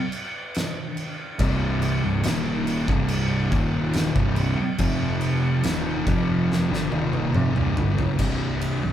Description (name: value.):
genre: stoner and doom metal.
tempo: 71 BPM.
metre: 4/4.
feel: straight.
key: C minor.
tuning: A4 = 440 Hz.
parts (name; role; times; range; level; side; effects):
oversized low-tuned drum kit; drums; 0.1-8.8 s; crash cymbal, kick drum, ride cymbal, snare drum, toms; -26 LUFS; equal; none.
thick fuzz guitar; riff; 1.4-8.9 s; C2 to F3; -26 LUFS; left 6 dB; distortion.
thick fuzz guitar; riff; 1.4-8.9 s; C2 to F3; -25 LUFS; right 5 dB; distortion.
fuzz picked electric bass; bass; 1.4-8.9 s; C1 to G1; -30 LUFS; equal; overdrive, tube saturation.
room: light reverb.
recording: band playing live in one room.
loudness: -21 LUFS.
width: side -10 dB against mid.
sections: 0.0-8.2 A section.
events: drum fill 6.5-8.2.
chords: 0.0 Cm; 4.8 F5; 5.6 Cm; 8.2 C5.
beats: 0.55 | 1.40 2.25 3.10 3.94 | 4.79 5.64 6.49 7.34 | 8.20.